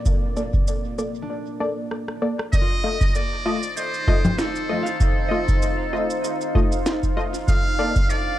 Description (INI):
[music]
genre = ambient dub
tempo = 97 BPM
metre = 4/4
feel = swing 55% on 16ths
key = F mixolydian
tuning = A4 = 440 Hz
[part]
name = deep dark ambient pad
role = sustained chords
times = 0.0-8.4 s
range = Bb3 to F5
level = -30 LUFS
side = right 1 dB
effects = chorus, built-in reverb
[part]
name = electronic kick drum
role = drums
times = 0.1-8.1 s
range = none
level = -21 LUFS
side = equal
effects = small room reverb
[part]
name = electronic shaker, rim click, congas and snare drum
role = drums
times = 0.1-8.2 s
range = none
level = -27 LUFS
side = left 1 dB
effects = small room reverb, dub echo
[part]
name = filtered dub chord stab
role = stabs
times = 0.4-7.9 s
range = A3 to Eb5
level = -27 LUFS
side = left 2 dB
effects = chorus, cassette tape, dub echo
[part]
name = concert harp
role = arpeggios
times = 1.2-7.5 s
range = D4 to F5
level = -36 LUFS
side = right 2 dB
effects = dub echo
[part]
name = trumpet with metal mute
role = melody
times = 2.5-8.4 s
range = A4 to F5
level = -27 LUFS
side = equal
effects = dub echo
[sound]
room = little or no reverb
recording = dark, warm production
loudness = -20 LUFS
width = side -13 dB against mid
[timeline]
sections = 0.0-2.5 A section; 2.5-8.4 B section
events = break 1.3-2.5; drum fill 1.9-2.5; band accent 2.4-2.7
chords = 0.0 Bbmaj7; 2.5 F7; 7.5 Bbmaj7